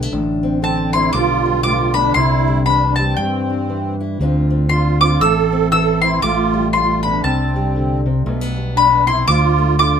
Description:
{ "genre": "acoustic folk duo or small band", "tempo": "118 BPM", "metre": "4/4", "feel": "swing 59% on 8ths", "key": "D dorian", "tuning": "A4 = 440 Hz", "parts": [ { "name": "fingerpicked steel-string acoustic guitar", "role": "accompaniment", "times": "0.0-10.0 s", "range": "D2 to F4", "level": "-22 LUFS", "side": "left 2 dB", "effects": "none" }, { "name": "fingered electric bass", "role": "bass", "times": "0.0-10.0 s", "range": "A1 to G2", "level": "-19 LUFS", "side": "equal", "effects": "none" }, { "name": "mandolin", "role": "melody", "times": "0.6-10.0 s", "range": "G5 to E6", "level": "-17 LUFS", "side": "left 3 dB", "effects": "none" }, { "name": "musette accordion", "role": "second line", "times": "0.6-10.0 s", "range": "C4 to A4", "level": "-20 LUFS", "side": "right 6 dB", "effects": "none" } ], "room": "moderate studio reverb, RT60 0.6 s", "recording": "minimal, uncompressed stereo recording", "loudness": "-14 LUFS", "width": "side -8 dB against mid", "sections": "0.0-10.0 A section", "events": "none", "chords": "0.1 D5/A; 1.1 G7/B; 2.2 Cadd9; 4.2 Dm7; 5.2 Am; 6.2 Fadd9/A; 7.2 Csus2; 8.3 G/B; 9.3 Dm" }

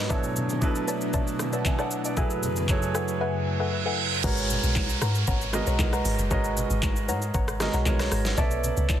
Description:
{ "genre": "amapiano", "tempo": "116 BPM", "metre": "4/4", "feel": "straight", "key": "G# phrygian", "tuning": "A4 = 440 Hz", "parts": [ { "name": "warm grand piano", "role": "accompaniment", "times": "0.0-9.0 s", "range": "B2 to B5", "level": "-29 LUFS", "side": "right 3 dB", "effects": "none" }, { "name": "airy breathy pad", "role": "sustained chords", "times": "0.0-4.2 s", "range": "F#2 to G#5", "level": "-31 LUFS", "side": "equal", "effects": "chorus" }, { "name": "soft round pluck", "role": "stabs", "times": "0.1-8.9 s", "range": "A4 to A#5", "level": "-33 LUFS", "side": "left 4 dB", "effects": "chorus, ping-pong delay" }, { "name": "smooth R&B drum kit", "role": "drums", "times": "0.1-9.0 s", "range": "crash cymbal, handclaps, hi-hat, kick drum, rim click, shaker, snare drum", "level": "-28 LUFS", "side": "equal", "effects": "none" }, { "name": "congas and bongos", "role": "percussion", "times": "0.1-9.0 s", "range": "none", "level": "-37 LUFS", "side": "left 3 dB", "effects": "none" }, { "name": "reverse cymbal and downlifter", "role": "sound effects", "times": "3.4-8.4 s", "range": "none", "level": "-32 LUFS", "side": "right 4 dB", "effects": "none" }, { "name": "deep log drum bass", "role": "bass", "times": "4.2-9.0 s", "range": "F#1 to G#2", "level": "-27 LUFS", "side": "equal", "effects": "none" } ], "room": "light reverb", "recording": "dense, heavily limited modern master", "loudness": "-23 LUFS", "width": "side -10 dB against mid", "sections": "0.0-4.2 A section; 4.2-9.0 B section", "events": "reverse cymbal 3.4-4.2; drop 4.2-9.0", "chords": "0.1 Bm11; 2.2 F#m11; 4.2 G#m11; 8.4 Bm11" }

